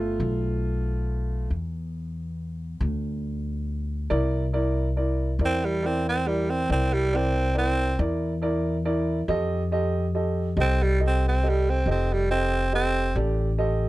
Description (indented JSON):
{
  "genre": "blues",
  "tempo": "46 BPM (dotted quarters)",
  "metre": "12/8",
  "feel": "straight",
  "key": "unclear",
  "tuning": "A4 = 439 Hz",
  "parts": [
    { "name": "dark upright piano", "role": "accompaniment", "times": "0.0-13.9 s", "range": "A3 to Eb5", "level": "-28 LUFS", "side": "right 2 dB", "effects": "none" },
    { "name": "upright bass", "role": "bass", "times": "0.0-13.9 s", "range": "F1 to F2", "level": "-26 LUFS", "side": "left 1 dB", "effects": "none" },
    { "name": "growling tenor saxophone", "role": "melody", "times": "5.5-13.2 s", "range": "G3 to C4", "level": "-25 LUFS", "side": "right 2 dB", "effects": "none" }
  ],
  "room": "light reverb",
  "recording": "dry, close 1970s-style studio recording",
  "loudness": "-23 LUFS",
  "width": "side -17 dB against mid",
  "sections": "0.0-4.1 A section; 4.1-13.9 A section",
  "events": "upright piano solo 0.0-4.1; tenor saxophone solo 4.1-13.9",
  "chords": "0.0 G9 (rootless); 4.1 C9; 9.3 F9"
}